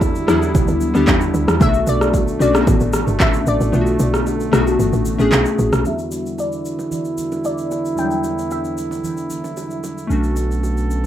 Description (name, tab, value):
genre	amapiano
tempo	113 BPM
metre	4/4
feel	straight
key	E minor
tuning	A4 = 440 Hz
part	glassy wavetable pluck	melody	0.0-9.8 s	D5 to G5	-24 LUFS	left 2 dB	chorus, low-pass filter, digital delay
part	glassy digital keys	accompaniment	0.0-11.1 s	E2 to A4	-21 LUFS	left 3 dB	chorus, low-pass filter
part	mellow brass ensemble	sustained chords	0.0-11.1 s	B2 to A4	-24 LUFS	right 2 dB	sidechain pumping, low-pass filter
part	woody log drum bass	bass	0.0-5.8 s	G1 to E2	-19 LUFS	right 1 dB	none
part	deep house drum kit	drums	0.0-11.0 s	handclaps, kick drum, rim click, shaker	-20 LUFS	equal	overdrive
part	bongos and congas	percussion	0.0-11.1 s	none	-32 LUFS	right 6 dB	none
part	punchy sub bass	bass	10.1-11.1 s	B1	-19 LUFS	right 1 dB	none
room	little or no reverb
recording	rough home demo mix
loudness	-15 LUFS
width	side -11 dB against mid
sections	0.0-5.9 A section; 5.9-11.1 B section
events	drop 0.0-5.9; kick muted 3.7-5.9; filter sweep 5.9-11.1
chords	0.0 Em7; 1.6 Bm7; 5.9 Em7; 10.1 Bm7